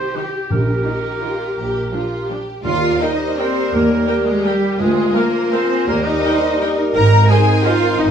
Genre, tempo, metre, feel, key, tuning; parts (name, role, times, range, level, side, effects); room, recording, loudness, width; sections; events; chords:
classical, orchestral ballroom waltz; 168 BPM; 3/4; uneven beats, rubato; Eb major; A4 = 440 Hz
warm cor anglais; second line; 0.0-8.1 s; G3 to C5; -26 LUFS; right 3 dB
warm symphonic violin section; second line; 0.0-8.1 s; G4 to Bb5; -26 LUFS; left 4 dB
warm symphonic cello section; bass; 0.0-8.1 s; G3 to Bb4; -20 LUFS; right 1 dB
warm symphonic viola section; accompaniment; 0.1-7.7 s; Eb3 to G5; -28 LUFS; equal
warm symphonic violin section; melody; 0.2-8.1 s; Eb4 to C5; -28 LUFS; right 1 dB
clear symphonic double bass section; bass; 0.5-8.1 s; Ab1 to Eb2; -20 LUFS; right 2 dB
timpani; percussion; 0.5-3.2 s; Bb2 to Eb3; -23 LUFS; equal
mellow bassoon; accompaniment; 2.6-8.1 s; Eb3 to G3; -24 LUFS; right 2 dB
mellow French horn section; sustained chords; 2.6-8.1 s; Bb3 to G4; -21 LUFS; left 4 dB
bright small flute group; second line; 2.7-8.1 s; G4 to Bb5; -26 LUFS; right 3 dB
warm clarinet; second line; 2.7-8.1 s; Bb4 to C5; -27 LUFS; right 1 dB
wet stone room reverb, RT60 1.1 s; small room ambience; -14 LUFS; side -8 dB against mid
0.0-2.6 A section; 2.6-8.1 B section
0.0 Cm; 0.5 Eb/Bb; 1.6 Bb; 2.6 Eb; 4.8 Bb7/D; 5.9 Eb; 7.0 Ab